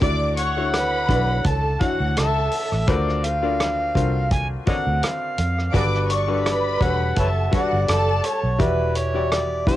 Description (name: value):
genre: lush 1970s-style soul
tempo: 84 BPM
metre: 4/4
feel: swing 54% on 16ths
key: D major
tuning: A4 = 439 Hz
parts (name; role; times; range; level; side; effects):
- overdriven harmonica; melody; 0.0-9.8 s; F#4 to A5; -25 LUFS; right 1 dB; cassette tape, plate reverb
- warm studio string section; second line; 0.0-8.4 s; F#4 to D6; -25 LUFS; equal; cassette tape, plate reverb
- bright grand piano; accompaniment; 0.0-9.8 s; D3 to D5; -27 LUFS; left 7 dB; cassette tape, plate reverb
- vintage muted fingered electric bass; bass; 0.0-9.8 s; E1 to E#2; -24 LUFS; right 1 dB; none
- warm soul drum kit; drums; 0.0-9.8 s; hi-hat, kick drum, rim click; -24 LUFS; right 1 dB; cassette tape
- vibraphone with soft mallets; texture; 0.4-9.8 s; C#5 to F#5; -33 LUFS; right 9 dB; stereo widening, cassette tape, plate reverb
room: moderate booth ambience, RT60 0.2 s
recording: home recording on cassette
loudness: -19 LUFS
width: side -14 dB against mid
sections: 0.0-9.8 A section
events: none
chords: 0.0 Dmaj9; 2.9 D7alt; 5.7 Gmaj9; 8.6 Em9